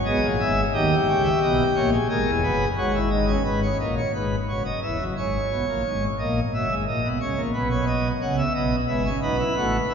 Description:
classical, baroque-style 3-part fugue for pipe organ; 88 BPM; 4/4; straight; A4 = 439 Hz
pipe organ, plenum; solo; 0.1-9.9 s; E1 to G5; -21 LUFS; equal
wet cathedral reverb, RT60 4.9 s; heard from further back in the room, nothing above 7.5 kHz; -21 LUFS; side -6 dB against mid
0.0-3.5 A section; 3.5-9.9 B section
0.0 C#m (rootless); 0.7 D#7; 2.1 G#m; 4.8 C#m/E; 6.2 F#7; 7.5 B; 8.9 E/G#

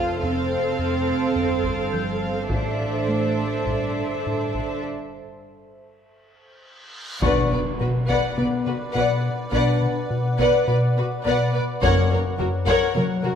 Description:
cinematic, suspense film score; 52 BPM; 4/4; straight; B minor from 7.2 s; A4 = 438 Hz
clear studio violin section; melody; 0.0-13.3 s; A#4 to F#5; -32 LUFS; left 2 dB
dark studio violin section; second line; 0.0-13.3 s; F#4 to D5; -28 LUFS; left 4 dB
dark symphonic viola section; accompaniment; 0.0-13.3 s; A4 to B4; -28 LUFS; right 1 dB
evolving wavetable pad; sustained chords; 0.0-13.4 s; A4 to F#5; -31 LUFS; equal; chorus, built-in reverb
warm symphonic cello section; bass; 0.0-13.3 s; F#2 to F4; -29 LUFS; right 4 dB
warm symphonic double bass section; bass; 0.0-13.0 s; F1 to B1; -32 LUFS; right 4 dB
rubbery square bass; riff; 0.2-13.3 s; F2 to B3; -26 LUFS; left 2 dB
solo taiko drums; drums; 1.6-13.4 s; -31 LUFS; equal
concert harp; texture; 1.9-11.1 s; C#6 to G6; -33 LUFS; left 6 dB
reverse cymbal and impact; sound effects; 6.8-11.8 s; -35 LUFS; equal
mellow French horn section; sustained chords; 7.2-12.3 s; A#3 to D4; -31 LUFS; left 4 dB
timpani; percussion; 7.2-13.4 s; F#2 to B2; -31 LUFS; left 1 dB
moderate scoring stage reverb, RT60 1.8 s; minimal, uncompressed stereo recording; -20 LUFS; side -8 dB against mid
0.0-7.2 A section; 7.2-13.4 B section
break 4.9-7.2; drum fill 6.0-7.2; reverse cymbal 6.8-7.2; impact 7.2-11.8
0.0 F; 2.5 Am; 4.9 N.C.; 7.2 Bm; 11.8 F#

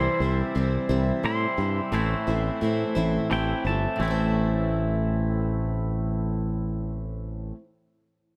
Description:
rock; 58 BPM (dotted quarters); 6/8; straight; A minor; A4 = 440 Hz
pedal steel guitar; melody; 0.0-4.0 s; G5 to C6; -35 LUFS; equal; tape echo
picked plugged-in steel-string acoustic guitar; accompaniment; 0.0-7.7 s; A2 to C5; -31 LUFS; equal
twangy electric guitar; riff; 0.0-7.6 s; A2 to E4; -35 LUFS; equal
modern bright fingered electric bass; bass; 0.0-7.5 s; G1 to A2; -28 LUFS; equal
little or no reverb; -26 LUFS; mono
0.0-4.0 A section; 4.0-8.1 B section
pedal steel guitar solo 0.0-4.0
0.0 C; 1.9 Am

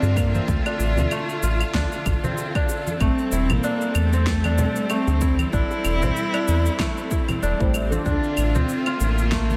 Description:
organic downtempo; 95 BPM; 4/4; swing 56% on 16ths; D minor; A4 = 439 Hz
dark cello; melody; 0.0-9.6 s; A3 to E4; -29 LUFS; equal; digital delay
clear studio string section; sustained chords; 0.0-9.6 s; D3 to E5; -32 LUFS; equal; vintage 12-bit sampler grit, sidechain pumping
kora; arpeggios; 0.0-9.6 s; A3 to F4; -31 LUFS; equal; digital delay, slapback echo
round analog bass; bass; 0.0-9.6 s; E1 to G2; -24 LUFS; equal; sidechain pumping
electronic cabasa, claves and snare drum; drums; 0.0-9.6 s; -33 LUFS; equal; small room reverb
bongos and congas; percussion; 0.0-9.6 s; -33 LUFS; equal
electronic kick drum; drums; 0.2-9.5 s; -27 LUFS; equal; small room reverb
deep mellow chord stab; accompaniment; 7.6-9.6 s; A3 to D5; -32 LUFS; equal; chorus, phaser, sidechain pumping, digital delay, slapback echo
moderate lush hall reverb, RT60 2.4 s; big arena sound; -22 LUFS; mono
0.0-9.6 A section
0.0 Dm7; 3.0 Am7; 8.1 Dm7

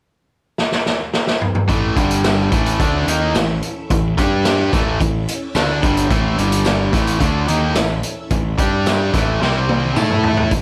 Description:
classic rock; 109 BPM; 4/4; straight; A mixolydian; A4 = 438 Hz
raw garage drum kit; drums; 0.6-10.6 s; hi-hat, kick drum, snare drum, toms; -21 LUFS; equal
distorted electric guitar; riff; 1.7-10.5 s; G2 to A4; -25 LUFS; equal; overdrive
overdriven electric guitar; riff; 1.7-10.5 s; G2 to A4; -23 LUFS; equal
fuzz picked electric bass; bass; 1.7-10.6 s; G1 to A2; -23 LUFS; equal; overdrive
phased string machine; sustained chords; 2.6-10.5 s; A3 to E5; -34 LUFS; equal
tambourine; percussion; 2.2-10.1 s; -37 LUFS; equal
light reverb, small room ambience; -17 LUFS; mono
0.0-1.7 A section; 1.7-10.5 B section
drum fill 0.6-1.7, 9.4-10.5
0.0 N.C.; 1.7 A5; 2.0 G5; 2.5 A; 4.2 G5; 4.7 A; 6.4 G5; 6.9 A; 8.6 G5; 9.1 A5; 9.4 C5; 10.0 A

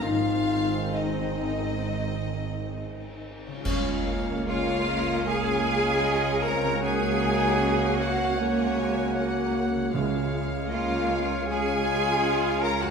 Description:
classical, slow romantic movement for symphony orchestra; 64-80 BPM; 4/4; rubato; Db major; A4 = 440 Hz
rich studio violin section; melody; 0.0-12.9 s; Db5 to Ab5; -38 LUFS; left 3 dB
bright clarinet; second line; 0.0-12.9 s; Eb4 to Db5; -36 LUFS; left 5 dB
mellow hollow concert flute; second line; 0.0-12.9 s; Db5 to Bb5; -36 LUFS; equal
rich studio violin section; second line; 0.0-12.9 s; Eb4 to Bb5; -34 LUFS; left 2 dB
rich studio viola section; accompaniment; 0.0-12.9 s; Eb3 to F4; -33 LUFS; equal
bright trombone section; sustained chords; 0.0-12.9 s; Db3 to Bb3; -33 LUFS; right 2 dB
mellow French horn section; sustained chords; 0.0-12.9 s; C4 to Gb4; -33 LUFS; left 2 dB
concert harp; arpeggios; 0.0-12.9 s; F2 to Bb4; -35 LUFS; left 6 dB
rich studio cello section; bass; 0.0-12.9 s; Ab2 to Bb4; -31 LUFS; right 4 dB
rich studio double bass section; bass; 0.0-12.9 s; Ab1 to Db2; -32 LUFS; right 4 dB
cymbal swell, clash cymbals and concert bass drum; percussion; 0.0-5.2 s; -35 LUFS; equal
warm oboe; second line; 3.6-12.9 s; F5 to Gb5; -36 LUFS; right 2 dB
dark trumpet; stabs; 4.5-12.9 s; Db4 to Bb4; -31 LUFS; left 3 dB
timpani; percussion; 9.9-11.1 s; Db3; -33 LUFS; right 5 dB
wet recital hall reverb, RT60 1.7 s; minimal, uncompressed stereo recording; -23 LUFS; side -6 dB against mid
0.0-3.6 A section; 3.6-12.9 B section
band accent 3.6-4.5
0.0 Ab; 3.6 Db; 6.8 Gb/Db

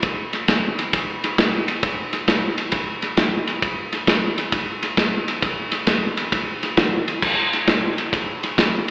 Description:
blues; 133 BPM; 4/4; swing 67% on 8ths
natural country drum kit; drums; 0.0-8.9 s; crash cymbal, kick drum, ride cymbal, snare drum; -19 LUFS; equal; slapback echo
wet plate reverb, RT60 1.1 s; live gig heard through the venue's PA, recital hall reverb, AM radio sound; -18 LUFS; side -26 dB against mid
0.0-7.2 A section; 7.2-8.9 A section

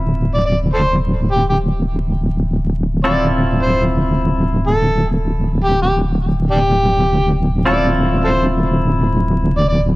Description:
glitch hop; 104 BPM; 4/4; swing 62% on 16ths; D minor; A4 = 440 Hz
semi-hollow electric guitar; stabs; 0.0-10.0 s; C4 to A4; -21 LUFS; left 1 dB; digital delay
wobble bass; bass; 0.0-10.0 s; D1; -16 LUFS; equal; chorus, overdrive
overdriven harmonica; melody; 0.3-9.8 s; D4 to D5; -20 LUFS; equal; vintage 12-bit sampler grit, digital delay
light reverb; vinyl crackle; -14 LUFS; side -19 dB against mid
0.0-10.0 A section
0.0 Dm7

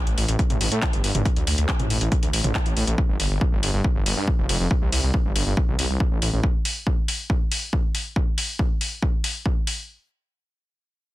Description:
driving peak-time techno; 139 BPM; 4/4; straight; A4 = 442 Hz
detuned saw bass; bass; 0.1-6.4 s; F1 to A2; -23 LUFS; equal; sidechain pumping
techno drum kit; drums; 0.1-9.8 s; handclaps, hi-hat, toms; -26 LUFS; left 1 dB; sidechain pumping on hats, sidechain pumping on cymbals, sidechain pumping on perc, sidechain pumping on toms
electronic kick drum; drums; 0.4-9.5 s; -23 LUFS; equal
little or no reverb; dense, heavily limited modern master; -20 LUFS; side -17 dB against mid
0.0-9.9 A section; 9.9-11.1 B section

